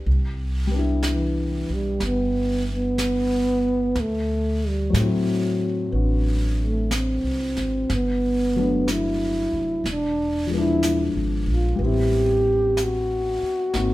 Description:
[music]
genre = jazz ballad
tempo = 61 BPM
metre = 4/4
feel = swing 68% on 8ths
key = unclear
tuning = A4 = 440 Hz
[part]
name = dark baby grand piano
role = accompaniment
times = 0.0-13.9 s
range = F3 to B4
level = -27 LUFS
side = left 4 dB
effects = none
[part]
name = upright bass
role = bass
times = 0.0-13.9 s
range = E1 to A2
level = -25 LUFS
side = equal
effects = none
[part]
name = jazz brush drum kit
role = drums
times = 0.1-13.9 s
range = brushed snare drum, hi-hat, snare drum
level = -34 LUFS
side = right 1 dB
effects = none
[part]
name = breathy trombone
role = melody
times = 1.1-13.9 s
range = E3 to G4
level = -23 LUFS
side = right 1 dB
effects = none
[sound]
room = moderate large studio reverb, RT60 1.2 s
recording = minimal, uncompressed stereo recording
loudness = -20 LUFS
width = side -17 dB against mid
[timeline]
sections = 0.0-13.9 A section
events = none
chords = 0.1 Cmaj9; 4.0 D9; 7.9 Gmaj9; 9.8 E7b9; 11.8 Am7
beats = | 0.06 1.03 2.01 2.98 | 3.96 4.94 5.91 6.90 | 7.88 8.86 9.84 10.82 | 11.80 12.77 13.74

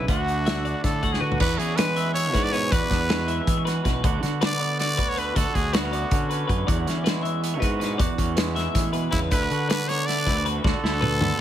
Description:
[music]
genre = math rock and midwest emo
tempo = 318 BPM (eighths)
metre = 7/8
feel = straight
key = unclear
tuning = A4 = 439 Hz
[part]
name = growling trumpet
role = melody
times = 0.0-6.5, 9.1-11.4 s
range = E4 to D5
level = -27 LUFS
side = equal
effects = slapback echo
[part]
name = twangy electric guitar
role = accompaniment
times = 0.0-11.4 s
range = E2 to F#4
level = -30 LUFS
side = right 10 dB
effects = none
[part]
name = twelve-string electric guitar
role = arpeggios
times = 0.0-11.4 s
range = B4 to F#5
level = -31 LUFS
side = left 6 dB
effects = slapback echo
[part]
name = fuzz fingered electric bass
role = bass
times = 0.0-11.3 s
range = B1 to E3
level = -27 LUFS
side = equal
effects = overdrive
[part]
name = loose indie drum kit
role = drums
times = 0.1-11.3 s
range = crash cymbal, hi-hat, kick drum, snare drum, toms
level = -25 LUFS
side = equal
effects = none
[sound]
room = light reverb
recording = none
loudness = -21 LUFS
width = side -11 dB against mid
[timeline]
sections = 0.0-1.4 A section; 1.4-11.4 B section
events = drum fill 1.1, 10.6-11.4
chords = 0.1 D; 1.4 E13; 4.0 Bmadd9/D; 6.7 E13; 9.3 Bm7/D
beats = | 0.08 0.27 0.46 0.64 0.83 1.02 1.21 | 1.40 1.59 1.78 1.97 2.15 2.34 2.53 | 2.72 2.91 3.10 3.28 3.47 3.66 3.85 | 4.04 4.23 4.42 4.60 4.79 4.98 5.17 | 5.36 5.55 5.73 5.92 6.11 6.30 6.49 | 6.68 6.87 7.05 7.24 7.43 7.62 7.81 | 8.00 8.18 8.37 8.56 8.75 8.94 9.12 | 9.31 9.50 9.69 9.88 10.07 10.26 10.44 | 10.63 10.82 11.01 11.20 11.38

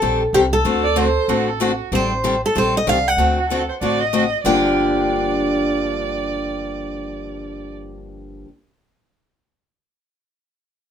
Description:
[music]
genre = acoustic string swing (jazz manouche)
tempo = 190 BPM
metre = 4/4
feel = swing 60% on 8ths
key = G minor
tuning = A4 = 439 Hz
[part]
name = picked steel-string acoustic guitar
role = melody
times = 0.0-8.4 s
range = G4 to G5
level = -19 LUFS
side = equal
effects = none
[part]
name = picked steel-string acoustic guitar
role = accompaniment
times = 0.0-8.5 s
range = G2 to A4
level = -21 LUFS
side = left 2 dB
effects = none
[part]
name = upright bass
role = bass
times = 0.0-8.4 s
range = G1 to D2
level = -27 LUFS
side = right 1 dB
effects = none
[part]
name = warm violin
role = second line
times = 0.8-7.7 s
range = F#4 to Eb5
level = -24 LUFS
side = right 6 dB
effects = none
[sound]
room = moderate small room reverb, RT60 0.5 s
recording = minimal, uncompressed stereo recording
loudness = -16 LUFS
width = side -8 dB against mid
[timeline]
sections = 0.0-4.4 A section; 4.4-7.0 B section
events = none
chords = 0.0 Am7b5; 0.6 D7; 1.9 Am7b5; 3.2 D7b9; 4.4 Gm7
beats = 0.01 0.33 | 0.65 0.96 1.28 1.59 | 1.91 2.23 2.54 2.86 | 3.18 3.49 3.81 4.12 | 4.44 4.76 5.07 5.39 | 5.71 6.02 6.34 6.66

